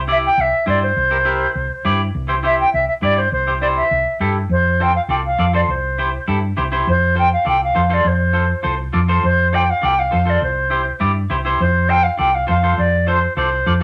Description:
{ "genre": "latin, cumbia", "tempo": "203 BPM", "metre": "4/4", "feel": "straight", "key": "F major", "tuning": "A4 = 442 Hz", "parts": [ { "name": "hollow-body short-scale fingered electric bass", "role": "bass", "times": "0.0-13.8 s", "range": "C2 to G2", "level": "-22 LUFS", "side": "equal", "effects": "none" }, { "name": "silver concert flute", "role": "melody", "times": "0.1-13.8 s", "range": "C5 to G5", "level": "-19 LUFS", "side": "equal", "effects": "none" }, { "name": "clean electric guitar", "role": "accompaniment", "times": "0.1-13.8 s", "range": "E4 to D5", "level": "-23 LUFS", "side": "equal", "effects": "none" } ], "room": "moderate studio reverb, RT60 0.6 s", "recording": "none", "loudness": "-17 LUFS", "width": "mono", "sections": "0.0-4.5 A section; 4.5-13.8 B section", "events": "none", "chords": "0.0 C; 4.5 F; 5.7 C; 6.9 F; 10.4 C; 11.6 F", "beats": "0.08 0.38 0.67 | 0.96 1.26 1.55 1.85 | 2.14 2.44 2.73 3.03 | 3.32 3.62 3.91 4.21 | 4.50 4.80 5.09 5.39 | 5.68 5.98 6.28 6.57 | 6.87 7.16 7.46 7.75 | 8.05 8.35 8.64 8.94 | 9.23 9.53 9.82 10.12 | 10.42 10.71 11.01 11.30 | 11.60 11.90 12.19 12.49 | 12.78 13.08 13.38 13.67" }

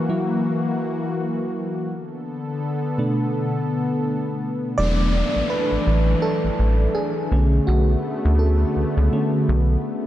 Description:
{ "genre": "R&B", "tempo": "83 BPM", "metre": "4/4", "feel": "swing 58% on 16ths", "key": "B dorian", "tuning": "A4 = 440 Hz", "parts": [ { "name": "FM electric piano with tremolo", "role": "accompaniment", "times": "0.0-10.1 s", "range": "B2 to D5", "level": "-24 LUFS", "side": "right 1 dB", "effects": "none" }, { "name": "warm analog pad", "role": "sustained chords", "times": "0.0-10.1 s", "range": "D3 to A4", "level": "-25 LUFS", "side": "left 2 dB", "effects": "chorus" }, { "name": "rubbery square bass", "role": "bass", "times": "4.8-9.8 s", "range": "E1 to D2", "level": "-18 LUFS", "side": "equal", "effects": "none" }, { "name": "downlifter", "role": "sound effects", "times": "4.8-10.1 s", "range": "none", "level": "-31 LUFS", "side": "left 2 dB", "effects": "none" } ], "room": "moderate lush hall reverb, RT60 2.7 s", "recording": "dreamy mix soaked in reverb", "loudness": "-19 LUFS", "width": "side -13 dB against mid", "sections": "0.0-4.8 A section; 4.8-10.1 B section", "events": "FM electric piano solo 0.0-4.8, 4.8-10.1", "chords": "0.0 F#7; 1.9 Bm7; 4.8 E7sus4; 7.3 Bm7", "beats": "0.45 1.17 | 1.90 2.62 3.34 4.07 | 4.79 5.51 6.24 6.96 | 7.68 8.40 9.13 9.85" }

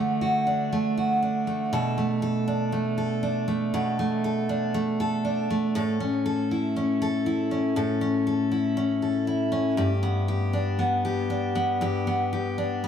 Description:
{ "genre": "pop", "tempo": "60 BPM", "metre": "4/4", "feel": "straight", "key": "B minor", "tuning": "A4 = 439 Hz", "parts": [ { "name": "picked steel-string acoustic guitar", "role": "solo", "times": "0.0-12.9 s", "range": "G2 to A4", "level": "-23 LUFS", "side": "equal", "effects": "tape echo" } ], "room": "light reverb", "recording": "none", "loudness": "-23 LUFS", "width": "side -8 dB against mid", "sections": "0.0-12.9 A section", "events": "none", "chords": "0.0 D; 1.7 Bm7; 5.8 A; 9.8 G", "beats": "0.72 | 1.73 2.73 3.74 4.75 | 5.76 6.76 7.77 8.78 | 9.79 10.80 11.82 12.85" }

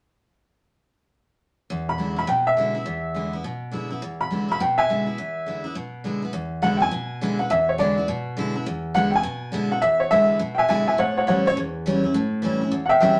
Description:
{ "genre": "rock", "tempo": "207 BPM", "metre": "4/4", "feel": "swing 64% on 8ths", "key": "E mixolydian", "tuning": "A4 = 435 Hz", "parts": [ { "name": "picked steel-string acoustic guitar", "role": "accompaniment", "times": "1.7-13.2 s", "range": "E2 to E4", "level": "-27 LUFS", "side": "equal", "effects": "none" }, { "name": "warm upright piano", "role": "melody", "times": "1.9-13.2 s", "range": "C#5 to B5", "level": "-23 LUFS", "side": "equal", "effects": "none" } ], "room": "moderate studio reverb, RT60 0.5 s", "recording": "none", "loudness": "-23 LUFS", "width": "mono", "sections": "1.7-6.3 A section; 6.3-13.2 B section", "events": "none", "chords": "1.7 E7; 11.0 A7", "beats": "| 1.70 1.99 2.28 2.57 | 2.86 3.15 3.44 3.73 | 4.02 4.31 4.60 4.89 | 5.18 5.47 5.76 6.05 | 6.34 6.63 6.92 7.21 | 7.50 7.79 8.08 8.37 | 8.66 8.95 9.24 9.53 | 9.82 10.11 10.40 10.69 | 10.98 11.27 11.56 11.85 | 12.14 12.43 12.72 13.01" }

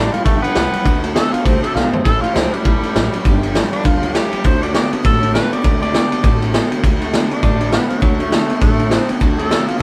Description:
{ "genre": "rockabilly", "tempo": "201 BPM", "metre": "4/4", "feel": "swing 60% on 8ths", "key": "D mixolydian", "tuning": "A4 = 440 Hz", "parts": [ { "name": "raspy tenor saxophone", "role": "melody", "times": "0.0-9.8 s", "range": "F#3 to D5", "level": "-24 LUFS", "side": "equal", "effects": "none" }, { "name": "picked steel-string acoustic guitar", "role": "accompaniment", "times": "0.0-9.8 s", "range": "G2 to G4", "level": "-28 LUFS", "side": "equal", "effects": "none" }, { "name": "electric guitar through a small old amp", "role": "riff", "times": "0.0-9.8 s", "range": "G2 to B3", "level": "-23 LUFS", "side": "equal", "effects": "harmonic tremolo" }, { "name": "upright bass", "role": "bass", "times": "0.0-9.7 s", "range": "G1 to D2", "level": "-26 LUFS", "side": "equal", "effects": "none" }, { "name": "vintage drum kit", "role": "drums", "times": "0.1-9.7 s", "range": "kick drum, ride cymbal, snare drum, toms", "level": "-19 LUFS", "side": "equal", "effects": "none" } ], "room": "moderate studio reverb, RT60 0.5 s", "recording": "band playing live in one room", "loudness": "-16 LUFS", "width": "mono", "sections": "0.0-6.8 A section; 6.8-9.8 B section", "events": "tenor saxophone solo 0.0-6.8; drum fill 1.8-2.1", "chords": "0.0 G7; 0.9 D7; 2.1 A7; 3.3 G7; 4.4 D7", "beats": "0.26 0.56 | 0.86 1.16 1.46 1.76 | 2.06 2.36 2.66 2.96 | 3.25 3.55 3.85 4.15 | 4.45 4.75 5.05 5.34 | 5.64 5.94 6.24 6.54 | 6.83 7.13 7.43 7.73 | 8.02 8.32 8.62 8.92 | 9.21 9.51 9.81" }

